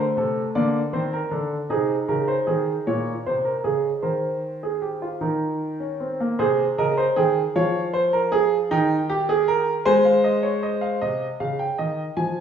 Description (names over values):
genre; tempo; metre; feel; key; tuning
classical, baroque-style 3-part fugue for grand piano; 52 BPM (dotted quarters); 6/8; straight; Ab major; A4 = 440 Hz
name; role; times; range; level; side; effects
warm grand piano; solo; 0.0-12.4 s; Bb2 to Ab5; -20 LUFS; right 1 dB; none
room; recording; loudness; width
wet stone room reverb, RT60 1.3 s; heard from further back in the room, small room ambience; -20 LUFS; side -8 dB against mid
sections
0.0-6.4 A section; 6.4-11.0 B section; 11.0-12.4 A section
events
none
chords
0.0 N.C.; 0.6 D5; 1.7 Ab/C; 2.9 Bbm; 4.0 Ebsus4; 5.2 Eb5; 6.4 Ab/C; 7.6 Db/F; 8.7 Eb; 9.8 Ab; 11.0 Cm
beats
0.56 | 1.71 2.87 | 4.04 5.22 | 6.40 7.56 | 8.70 9.85 | 11.00 12.16